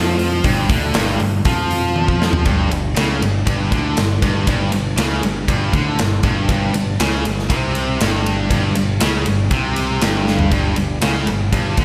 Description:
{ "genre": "hard rock", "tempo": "119 BPM", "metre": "4/4", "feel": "straight", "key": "unclear", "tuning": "A4 = 440 Hz", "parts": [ { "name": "heavy high-gain guitar", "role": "riff", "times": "0.0-11.8 s", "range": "G2 to F3", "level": "-25 LUFS", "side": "equal", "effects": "distortion" }, { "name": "tight distorted guitar", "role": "riff", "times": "0.0-11.8 s", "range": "G2 to F3", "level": "-24 LUFS", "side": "equal", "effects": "distortion, slapback echo" }, { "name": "picked electric bass", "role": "bass", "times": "0.0-11.8 s", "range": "G1 to F2", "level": "-24 LUFS", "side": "equal", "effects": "none" }, { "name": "big rock drum kit", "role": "drums", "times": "0.2-11.8 s", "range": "hi-hat, kick drum, ride cymbal, snare drum, toms", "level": "-21 LUFS", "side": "equal", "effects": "none" } ], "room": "moderate lush hall reverb, RT60 1.8 s, studio ambience", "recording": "big arena sound", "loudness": "-18 LUFS", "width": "mono", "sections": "0.0-2.5 A section; 2.5-11.8 B section", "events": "drum fill 2.0-2.5, 10.3", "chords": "0.0 G5" }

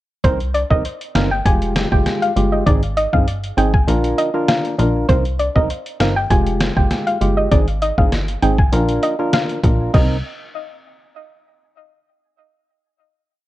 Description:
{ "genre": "dancehall", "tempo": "99 BPM", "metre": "4/4", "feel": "straight", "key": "C minor", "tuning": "A4 = 440 Hz", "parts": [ { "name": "soft round pluck", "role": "melody", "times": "0.2-10.2 s", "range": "C5 to Ab5", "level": "-22 LUFS", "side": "equal", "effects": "chorus, ping-pong delay" }, { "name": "percussive organ stab", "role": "accompaniment", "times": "0.2-10.2 s", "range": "Ab3 to Bb4", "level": "-21 LUFS", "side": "equal", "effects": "chorus, sidechain pumping" }, { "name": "plucky analog bass", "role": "bass", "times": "0.2-10.2 s", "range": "F1 to C2", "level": "-20 LUFS", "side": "equal", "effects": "none" }, { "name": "trip hop sampler-style drum kit", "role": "drums", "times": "0.2-10.1 s", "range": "crash cymbal, hi-hat, kick drum, rim click, snare drum", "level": "-18 LUFS", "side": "equal", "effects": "none" } ], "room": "little or no reverb", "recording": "worn, warbling old tape, cassette tape, warbly pitch drift", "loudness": "-15 LUFS", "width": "side -16 dB against mid", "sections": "0.2-9.9 chorus; 9.9-12.4 final chord", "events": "none", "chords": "0.2 Cm7; 1.5 Fmadd9; 2.7 Ab; 3.9 Bb; 5.1 Cm7; 6.3 Fmadd9; 7.5 Ab; 8.7 Bb; 9.9 Cm7" }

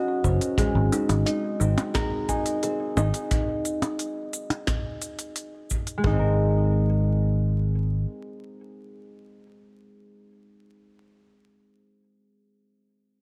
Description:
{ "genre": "folktronica", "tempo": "88 BPM", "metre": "4/4", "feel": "straight", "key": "Ab mixolydian", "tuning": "A4 = 436 Hz", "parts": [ { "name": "kalimba", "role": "second line", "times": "0.0-6.4 s", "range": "Eb4 to Ab5", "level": "-34 LUFS", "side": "equal", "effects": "delay" }, { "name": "concert harp", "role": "arpeggios", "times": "0.0-11.8 s", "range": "Gb3 to Bb4", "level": "-32 LUFS", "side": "equal", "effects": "tape echo" }, { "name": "fingered electric bass", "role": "bass", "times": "0.2-8.0 s", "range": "Gb1 to Ab1", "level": "-24 LUFS", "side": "equal", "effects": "none" }, { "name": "kick drum", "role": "drums", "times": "0.2-6.2 s", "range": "none", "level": "-30 LUFS", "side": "equal", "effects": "none" }, { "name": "minimal click drum kit", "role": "drums", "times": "0.2-6.0 s", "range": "hi-hat, percussion blips, shaker, snare drum", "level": "-32 LUFS", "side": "equal", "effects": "none" } ], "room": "studio ambience", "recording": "vinyl crackle", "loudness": "-25 LUFS", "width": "mono", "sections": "0.0-6.0 A section; 6.0-8.8 B section", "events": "none", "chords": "0.0 Gb; 0.6 Abadd9; 3.3 N.C.; 6.0 Abadd9" }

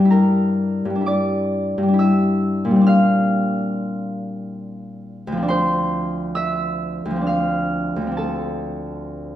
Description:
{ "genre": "classical, solo harp piece", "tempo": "67 BPM", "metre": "3/4", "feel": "uneven beats, rubato", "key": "G dorian", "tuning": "A4 = 438 Hz", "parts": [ { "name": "Celtic harp", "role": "solo", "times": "0.0-9.4 s", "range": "D2 to F6", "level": "-18 LUFS", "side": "left 1 dB", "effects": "none" } ], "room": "wet recital hall reverb, RT60 1.5 s", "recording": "recorded in a church or concert hall", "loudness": "-18 LUFS", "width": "side -12 dB against mid", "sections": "0.1-9.4 A section", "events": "none", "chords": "0.1 Gm6; 2.9 Bb69; 5.5 Dm7" }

